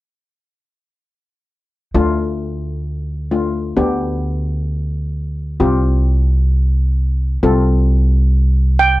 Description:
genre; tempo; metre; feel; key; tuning
calypso; 131 BPM; 4/4; straight; D minor; A4 = 440 Hz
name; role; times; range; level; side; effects
steel pan; accompaniment; 1.9-9.0 s; A3 to A4; -19 LUFS; left 3 dB; none
upright bass; bass; 1.9-9.0 s; C2 to D2; -16 LUFS; equal; none
steel pan; melody; 8.8-9.0 s; G5; -11 LUFS; right 5 dB; none
room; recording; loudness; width
little or no reverb; nothing above 10.8 kHz; -14 LUFS; side -17 dB against mid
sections
1.9-9.0 A section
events
none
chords
1.9 Dm; 3.8 G/D; 5.6 Csus4; 7.4 F/C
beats
| 1.95 2.40 2.86 3.32 | 3.77 4.23 4.69 5.15 | 5.60 6.06 6.52 6.97 | 7.43 7.89 8.34 8.80

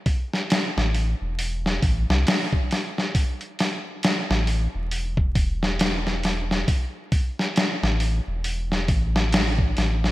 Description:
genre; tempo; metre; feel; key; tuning
trip hop; 68 BPM; 4/4; swing 59% on 16ths; A minor; A4 = 441 Hz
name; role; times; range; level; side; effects
dusty soul sampler-style drum kit; drums; 0.1-10.1 s; hi-hat, kick drum, snare drum; -22 LUFS; equal; gated reverb
soft dub sub bass; bass; 0.8-10.1 s; E1 to C2; -24 LUFS; equal; none
room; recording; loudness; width
light reverb; bright 1980s-style digital production, vinyl crackle; -21 LUFS; side -17 dB against mid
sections
0.0-10.1 A section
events
none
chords
none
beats
0.50 1.39 2.27 | 3.15 4.03 4.92 5.80 | 6.68 7.56 8.45 9.33

